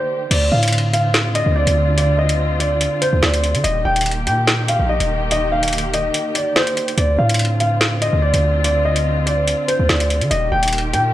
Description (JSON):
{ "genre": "hip hop, drill", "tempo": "144 BPM", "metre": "4/4", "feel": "half-time", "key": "D phrygian", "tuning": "A4 = 436 Hz", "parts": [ { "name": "dark concert grand piano", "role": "melody", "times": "0.0-11.1 s", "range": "C5 to G5", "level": "-19 LUFS", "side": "equal", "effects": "none" }, { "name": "muted studio string section", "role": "sustained chords", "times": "0.0-11.1 s", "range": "D3 to G4", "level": "-23 LUFS", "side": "equal", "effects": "none" }, { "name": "hard-hitting 808-style bass", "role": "bass", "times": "0.3-11.1 s", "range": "Eb1 to D3", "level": "-19 LUFS", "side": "equal", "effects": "none" }, { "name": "drill drum kit", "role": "drums", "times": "0.3-11.0 s", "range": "crash cymbal, hi-hat, snare drum", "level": "-20 LUFS", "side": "equal", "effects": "none" } ], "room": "moderate recital hall reverb, RT60 1.5 s", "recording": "none", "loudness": "-15 LUFS", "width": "side -14 dB against mid", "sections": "0.3-11.1 A section", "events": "break 0.0-0.3; kick muted 6.1-7.0", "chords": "0.3 Dm7; 3.6 Eb; 7.0 Dm7; 10.3 Eb" }